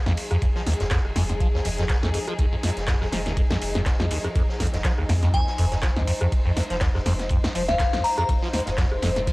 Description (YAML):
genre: acid house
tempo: 122 BPM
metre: 4/4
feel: swing 55% on 16ths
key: F minor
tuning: A4 = 439 Hz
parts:
  - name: dark studio string section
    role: sustained chords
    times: 0.0-9.3 s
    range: F3 to C5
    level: -31 LUFS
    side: left 1 dB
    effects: sidechain pumping
  - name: round analog bass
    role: bass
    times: 0.0-9.3 s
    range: Eb1 to F2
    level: -29 LUFS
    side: equal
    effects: sidechain pumping
  - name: liquid acid bass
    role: riff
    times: 0.1-9.3 s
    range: Eb2 to F3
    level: -25 LUFS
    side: equal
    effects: phaser, tube saturation, analog chorus, cassette tape, sidechain pumping
  - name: electro analog drum machine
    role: drums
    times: 0.1-9.3 s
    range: handclaps, hi-hat, rim click, snare drum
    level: -30 LUFS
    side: equal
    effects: overdrive
  - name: vintage drum kit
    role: drums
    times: 0.2-9.3 s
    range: ride cymbal, snare drum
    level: -36 LUFS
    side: equal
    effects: sidechain pumping on cymbals, high-pass filter on cymbals, high-pass filter on snare, high-pass filter on room
  - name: electronic kick drum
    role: drums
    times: 0.4-9.3 s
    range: none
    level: -24 LUFS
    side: equal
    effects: overdrive
  - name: glassy synth bell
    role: melody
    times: 5.3-8.2 s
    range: F5 to Bb5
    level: -27 LUFS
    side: left 2 dB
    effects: chorus, phaser, cassette tape, analog delay
room: moderate booth ambience, RT60 0.2 s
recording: home recording on cassette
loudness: -21 LUFS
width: side -21 dB against mid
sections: 0.0-9.3 A section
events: none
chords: 0.0 Fm7